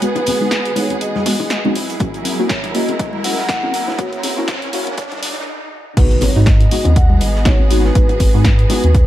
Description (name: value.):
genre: deep house.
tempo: 121 BPM.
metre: 4/4.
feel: swing 56% on 16ths.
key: G# minor.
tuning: A4 = 439 Hz.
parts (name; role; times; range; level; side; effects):
vibraphone with soft mallets; melody; 0.0-9.1 s; B4 to F#5; -24 LUFS; right 1 dB; low-pass filter, tape echo.
soft string machine; sustained chords; 0.0-9.1 s; F#3 to A#5; -29 LUFS; right 1 dB; ensemble chorus, sidechain pumping.
deep mellow chord stab; stabs; 0.0-8.9 s; G#3 to F#4; -22 LUFS; equal; chorus, sidechain pumping.
deep reggae drum kit; drums; 0.0-9.1 s; hi-hat, snare drum; -33 LUFS; right 3 dB; none.
house drum kit; drums; 0.0-9.1 s; crash cymbal, hi-hat, snare drum; -23 LUFS; equal; high-pass filter on hats, high-pass filter on snare, high-pass filter on cymbals.
riser and impact; sound effects; 0.0-8.0 s; none; -27 LUFS; equal; none.
rich symphonic string section; texture; 0.0-9.1 s; B3 to F#5; -27 LUFS; right 3 dB; sidechain pumping.
bongos and congas; percussion; 0.2-8.9 s; none; -25 LUFS; left 5 dB; sidechain pumping on perc.
electronic kick drum; drums; 2.0-9.1 s; none; -14 LUFS; equal; none.
sub bass with octave; bass; 6.0-9.1 s; G#1 to G#2; -15 LUFS; equal; sidechain pumping.
room: light reverb.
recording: dark, warm production, high-pass filter.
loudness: -13 LUFS.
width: side -13 dB against mid.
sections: 0.0-6.0 A section; 6.0-9.1 B section.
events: build-up 0.0-6.0; riser 0.0-5.5; filter sweep on synth stab 0.0-6.0; filter sweep 0.0-6.0; break 5.5-6.0; drop 6.0-9.1; impact 6.0-8.0.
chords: 0.0 G#m7; 1.8 F#7; 6.0 G#m7.